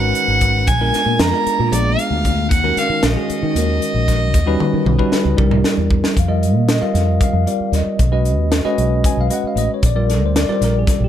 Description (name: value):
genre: electric jazz fusion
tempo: 230 BPM (eighths)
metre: 7/8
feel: straight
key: F dorian from 6.2 s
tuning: A4 = 440 Hz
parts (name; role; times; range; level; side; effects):
- warm violin; melody; 0.0-5.4 s; D5 to A#5; -20 LUFS; right 2 dB; tape echo
- bell-like tine electric piano; accompaniment; 0.0-11.1 s; D#3 to Ab5; -20 LUFS; equal; fast stereo tremolo
- fretless electric bass; bass; 0.0-11.1 s; G#1 to D#3; -18 LUFS; equal; ensemble chorus
- crisp fusion drum kit; drums; 0.1-11.0 s; hi-hat, kick drum, snare drum, toms; -19 LUFS; equal; none
room: little or no reverb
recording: none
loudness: -14 LUFS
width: side -10 dB against mid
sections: 0.0-6.2 A section; 6.2-11.1 B section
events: drum fill 4.6-6.2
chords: 0.0 G#m11; 0.7 A#7b9; 2.5 D#m7; 4.3 D#7alt; 5.4 C7; 6.2 F5; 8.0 Badd9; 9.8 Bbmaj9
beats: 0.16 0.42 | 0.68 0.94 1.21 1.47 1.73 1.99 2.25 | 2.51 2.78 3.04 3.30 3.56 3.82 4.08 | 4.34 4.60 4.87 5.13 5.39 5.65 5.91 | 6.17 6.43 6.69 6.95 7.21 7.47 7.74 | 8.00 8.26 8.52 8.78 9.04 9.30 9.56 | 9.82 10.09 10.35 10.61 10.87